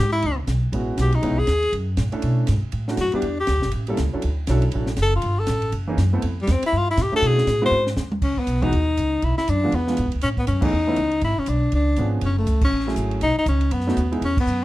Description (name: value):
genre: jazz, small-group swing and bop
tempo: 240 BPM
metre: 4/4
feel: swing 60% on 8ths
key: A major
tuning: A4 = 441 Hz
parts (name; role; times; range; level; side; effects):
- warm tenor saxophone; melody; 0.0-14.6 s; G3 to C5; -22 LUFS; left 2 dB; none
- upright bass; bass; 0.0-14.6 s; F#1 to B2; -22 LUFS; equal; none
- compact cocktail drum kit; drums; 0.2-14.5 s; crash cymbal, hi-hat, kick drum, ride cymbal, snare drum, toms; -29 LUFS; equal; none
- warm concert grand piano; accompaniment; 0.7-14.2 s; E3 to A4; -26 LUFS; right 2 dB; none
room: light reverb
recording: dark, warm production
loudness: -19 LUFS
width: side -16 dB against mid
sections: 0.2-8.2 A section; 8.2-14.6 B section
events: tenor saxophone solo 0.0-8.2; drum fill 7.7-8.2; band accent 10.6, 12.6, 14.3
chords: 0.2 Amaj13; 1.2 C#m9; 1.7 F#m7; 2.2 Bm11; 3.2 Em7; 3.7 A7b9; 4.2 Dmaj9; 5.2 Gsus2; 5.7 F#13; 6.2 Fmaj9; 7.2 Bm11; 7.7 Eaug; 8.2 C#7sus2; 9.2 Bm; 9.7 E7b9; 10.2 Aadd9; 11.2 G#dim; 11.7 C#7b9; 12.2 F#m9; 13.2 Badd9